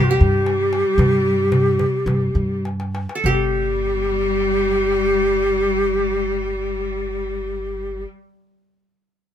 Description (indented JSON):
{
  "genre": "Arabic maqam ensemble",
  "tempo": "98-119 BPM",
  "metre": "4/4",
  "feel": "straight",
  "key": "unclear",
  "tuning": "A4 = 436 Hz",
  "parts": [
    { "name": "breathy mellow low ney", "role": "melody", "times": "0.0-8.0 s", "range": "F#4-44c to G4", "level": "-20 LUFS", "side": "left 1 dB", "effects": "none" },
    { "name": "clear studio cello section", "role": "second line", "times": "0.0-8.0 s", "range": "G3", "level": "-26 LUFS", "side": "left 1 dB", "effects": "none" },
    { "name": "qanun", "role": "second line", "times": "0.0-8.1 s", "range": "G4 to Bb4+50c", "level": "-24 LUFS", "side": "right 2 dB", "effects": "none" },
    { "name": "upright bass", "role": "bass", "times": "0.0-8.0 s", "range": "G1 to G2", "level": "-23 LUFS", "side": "right 1 dB", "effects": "none" },
    { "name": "darbuka", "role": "percussion", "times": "0.1-3.5 s", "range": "none", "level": "-22 LUFS", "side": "equal", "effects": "none" }
  ],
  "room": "moderate studio reverb, RT60 0.6 s",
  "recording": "minimal, uncompressed stereo recording",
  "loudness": "-17 LUFS",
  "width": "side -10 dB against mid",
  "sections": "0.0-3.2 A section; 3.2-8.2 B section",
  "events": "slowing down 0.0-3.2; drum fill 2.6-3.2",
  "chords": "none",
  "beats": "0.47 | 0.98 1.52 2.07 2.65 | 3.25 3.86 4.47 5.09 | 5.70 6.32 6.93 7.54"
}